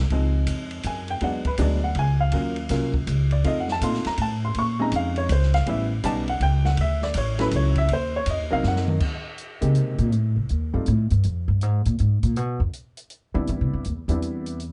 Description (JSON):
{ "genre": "jazz piano trio", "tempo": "162 BPM", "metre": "3/4", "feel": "swing 64% on 8ths", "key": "Db major", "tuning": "A4 = 439 Hz", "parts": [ { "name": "upright bass", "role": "bass", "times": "0.0-14.7 s", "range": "A1 to E3", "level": "-25 LUFS", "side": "equal", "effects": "none" }, { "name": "warm upright piano", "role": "melody", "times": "0.1-10.9, 13.3-14.6 s", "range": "F3 to Db6", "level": "-28 LUFS", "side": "equal", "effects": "plate reverb" }, { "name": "open jazz drum kit", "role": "drums", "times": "0.1-14.7 s", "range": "crash cymbal, hi-hat, kick drum, ride cymbal, snare drum, toms", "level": "-35 LUFS", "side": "equal", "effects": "none" } ], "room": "little or no reverb", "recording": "dark, warm production, nothing above 10.6 kHz", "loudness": "-23 LUFS", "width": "mono", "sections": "0.1-9.0 A section; 9.0-14.7 A section", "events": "upright piano solo 0.0-9.0; drum fill 8.6-9.0; upright bass solo 9.0-14.7", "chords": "0.1 Dbmaj7; 1.2 E9; 2.3 Ebm7; 3.4 F7; 4.6 Bbm11; 5.7 A7; 6.8 Dmaj7; 7.9 Cm7b5; 9.0 Abmaj7; 10.1 F7 (rootless); 11.2 Bb5; 12.4 G7b13/F (rootless); 13.5 Cmaj7" }